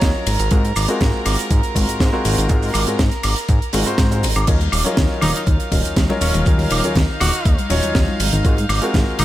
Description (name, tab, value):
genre	nu-disco, nu disco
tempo	121 BPM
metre	4/4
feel	straight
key	unclear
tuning	A4 = 441 Hz
part	warm grand piano	accompaniment	0.0-9.2 s	Gb3 to Db5	-23 LUFS	left 1 dB	sidechain pumping, tape echo
part	warm studio violin section	sustained chords	0.0-9.2 s	Eb4 to Bb5	-27 LUFS	right 1 dB	sidechain pumping
part	fat analog bass	bass	0.0-9.2 s	Eb1 to Ab2	-20 LUFS	equal	none
part	electronic kick drum	drums	0.0-9.0 s	none	-18 LUFS	equal	small room ambience
part	tight funk drum kit	drums	0.0-9.2 s	cabasa, crash cymbal, hi-hat, ride cymbal, snare drum, woodblock	-22 LUFS	right 2 dB	small room ambience
part	congas	percussion	4.6-9.2 s	none	-26 LUFS	left 2 dB	none
part	clear tenor saxophone	melody	5.2-9.2 s	Db4 to Gb4	-28 LUFS	equal	tape echo
room	little or no reverb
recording	none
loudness	-15 LUFS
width	side -14 dB against mid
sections	0.0-9.2 A section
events	none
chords	0.3 Ab13; 4.5 Ebm9; 8.2 Ab13